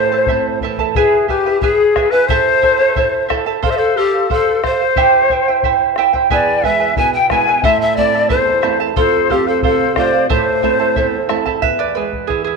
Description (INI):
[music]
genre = andean folk, Andean ensemble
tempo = 90 BPM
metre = 2/4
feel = straight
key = A minor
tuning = A4 = 440 Hz
[part]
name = breathy polished pan flute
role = melody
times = 0.0-11.3 s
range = G4 to G#5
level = -16 LUFS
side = left 1 dB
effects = none
[part]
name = breathy mellow quena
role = second line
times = 0.0-11.3 s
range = G4 to G#5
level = -19 LUFS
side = left 9 dB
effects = none
[part]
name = charango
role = accompaniment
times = 0.0-12.6 s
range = E4 to A5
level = -18 LUFS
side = right 9 dB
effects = none
[part]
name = flamenco guitar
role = accompaniment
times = 0.0-0.9, 6.3-12.6 s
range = E2 to F4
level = -22 LUFS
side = right 11 dB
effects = none
[part]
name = bombo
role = percussion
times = 0.3-12.4 s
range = none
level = -23 LUFS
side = left 4 dB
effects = none
[sound]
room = wet echo chamber reverb, RT60 2.0 s, small room ambience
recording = 1960s-style stereo with parts hard left and right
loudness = -12 LUFS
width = side -4 dB against mid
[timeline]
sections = 1.0-11.6 A section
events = none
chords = 0.0 Am; 1.0 E; 2.3 Am; 3.6 F; 5.0 C; 6.3 E; 7.6 Am; 9.0 F; 10.3 Am; 11.6 E